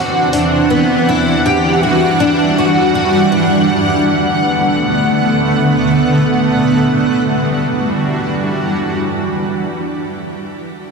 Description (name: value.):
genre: dream pop.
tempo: free time.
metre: none.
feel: none.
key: E minor.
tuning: A4 = 440 Hz.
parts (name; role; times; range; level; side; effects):
granular cloud pad; sustained chords; 0.0-9.9 s; D3 to F#5; -13 LUFS; right 1 dB; built-in reverb.
fingerpicked twelve-string acoustic guitar; arpeggios; 0.0-3.7 s; B3 to G4; -17 LUFS; left 2 dB; analog chorus, ping-pong delay.
hi-hat; drums; 0.3-0.5 s; none; -30 LUFS; equal; none.
room: moderate shimmer reverb, RT60 8.4 s.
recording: dense, heavily limited modern master.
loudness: -12 LUFS.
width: side -4 dB against mid.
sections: 0.0-6.7 A section; 6.7-9.7 B section.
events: none.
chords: 0.0 D9; 0.7 Em9; 3.7 Bm7/D; 6.7 Em9.